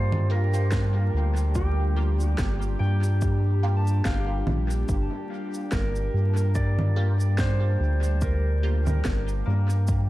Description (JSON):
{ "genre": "ambient dub", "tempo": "72 BPM", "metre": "4/4", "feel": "swing 57% on 16ths", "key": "G minor", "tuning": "A4 = 442 Hz", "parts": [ { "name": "clean lap steel guitar", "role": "melody", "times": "0.0-9.8 s", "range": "G4 to D5", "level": "-34 LUFS", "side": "right 3 dB", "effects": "vintage 12-bit sampler grit, dub echo" }, { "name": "warbly tape-like pad", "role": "sustained chords", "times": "0.0-10.1 s", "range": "G3 to G4", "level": "-35 LUFS", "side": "left 1 dB", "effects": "chorus, built-in reverb, phaser, vintage 12-bit sampler grit" }, { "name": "concert harp", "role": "arpeggios", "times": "0.0-10.1 s", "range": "A3 to A5", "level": "-41 LUFS", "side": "left 3 dB", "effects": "dub echo" }, { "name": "round analog bass", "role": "bass", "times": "0.0-10.1 s", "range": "G1 to G2", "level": "-23 LUFS", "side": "equal", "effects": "none" }, { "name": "wind-like tuned noise texture", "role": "texture", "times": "0.0-10.1 s", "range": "G3 to Bb3", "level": "-40 LUFS", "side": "equal", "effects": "built-in reverb" }, { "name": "electronic congas, shaker and snare drum", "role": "drums", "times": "0.1-10.1 s", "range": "none", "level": "-34 LUFS", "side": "right 1 dB", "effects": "overdrive, dub echo" }, { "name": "filtered dub chord stab", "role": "stabs", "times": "0.3-8.8 s", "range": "Bb3 to G4", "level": "-40 LUFS", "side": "right 2 dB", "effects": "phaser, ensemble chorus, dub echo" }, { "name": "electronic kick drum", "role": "drums", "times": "0.7-10.1 s", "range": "none", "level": "-28 LUFS", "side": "equal", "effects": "overdrive" } ], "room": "little or no reverb", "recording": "vinyl crackle", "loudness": "-22 LUFS", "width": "side -17 dB against mid", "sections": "0.0-10.1 A section", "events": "none", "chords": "0.0 Gm7" }